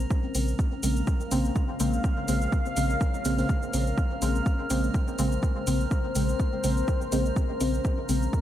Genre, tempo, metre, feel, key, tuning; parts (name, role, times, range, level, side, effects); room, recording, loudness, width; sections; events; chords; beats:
dub techno; 124 BPM; 4/4; swing 55% on 16ths; Bb minor; A4 = 440 Hz
deep dark ambient pad; sustained chords; 0.0-8.4 s; Ab3 to F5; -33 LUFS; left 3 dB; chorus, built-in reverb, sidechain pumping
soft dub sub bass; bass; 0.0-8.3 s; Bb1; -28 LUFS; equal; sidechain pumping
electronic cabasa and hi-hat; drums; 0.0-8.4 s; -36 LUFS; equal; overdrive
drifting glass-harmonics texture; texture; 0.0-8.4 s; Bb4; -39 LUFS; right 3 dB; chorus, built-in reverb, sidechain pumping
electronic kick drum; drums; 0.1-8.4 s; -26 LUFS; equal; overdrive
deep mellow chord stab; stabs; 0.3-8.3 s; Db3 to C4; -29 LUFS; equal; chorus, phaser, vintage 12-bit sampler grit, sidechain pumping, dub echo
moderate lush hall reverb, RT60 1.8 s, digital ambience; dreamy mix soaked in reverb; -24 LUFS; side -12 dB against mid
0.0-8.4 A section
0.0 Bbm9
| 0.11 0.59 1.07 1.56 | 2.04 2.52 3.01 3.49 | 3.98 4.46 4.94 5.43 | 5.91 6.40 6.88 7.36 | 7.85 8.33